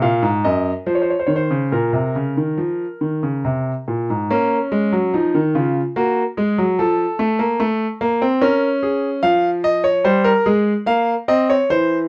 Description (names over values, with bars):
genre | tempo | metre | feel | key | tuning
classical, baroque-style two-part invention for grand piano | 72 BPM | 3/4 | straight | Bb minor | A4 = 440 Hz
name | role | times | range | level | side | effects
clear grand piano | solo | 0.0-12.1 s | Gb2 to F5 | -18 LUFS | equal | none
room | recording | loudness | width
light reverb | none | -18 LUFS | mono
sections
0.0-4.3 A section; 4.3-12.1 B section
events
none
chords
0.0 Cm7b5 (rootless); 0.8 F5; 1.7 Bbm; 6.0 Gbadd9; 6.8 F; 8.4 Bbm/Db; 9.2 Fm; 10.9 Bbm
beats
0.01 0.85 | 1.71 2.57 3.43 | 4.29 5.13 5.95 | 6.78 7.60 8.42 | 9.23 10.05 10.88 | 11.71